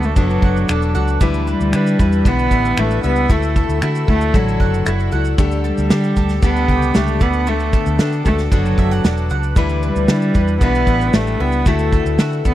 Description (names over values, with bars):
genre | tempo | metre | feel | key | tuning
acoustic pop | 115 BPM | 4/4 | straight | unclear | A4 = 440 Hz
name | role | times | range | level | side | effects
warm cello | melody | 0.0-12.5 s | F#3 to B3 | -19 LUFS | right 1 dB | tape echo
picked plugged-in steel-string acoustic guitar | accompaniment | 0.0-12.5 s | D3 to B4 | -22 LUFS | left 7 dB | none
ethereal airy pad | sustained chords | 0.0-12.5 s | A4 to E6 | -30 LUFS | left 2 dB | ensemble chorus, built-in reverb, phaser
bowl-back mandolin | arpeggios | 0.0-12.5 s | G3 to G5 | -28 LUFS | right 8 dB | none
vintage muted fingered electric bass | bass | 0.0-12.5 s | E1 to D3 | -19 LUFS | equal | none
natural country drum kit | drums | 0.0-12.5 s | finger snaps, kick drum, shaker, snare drum | -17 LUFS | equal | none
room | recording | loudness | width
small room ambience | dry, close 1970s-style studio recording | -14 LUFS | side -13 dB against mid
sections
0.0-12.5 A section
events
none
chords
0.0 Bm7; 1.2 Em/D; 3.3 Dadd9; 5.4 Gsus2/D; 7.2 Bm7/D; 9.6 Em/D; 11.7 Dadd9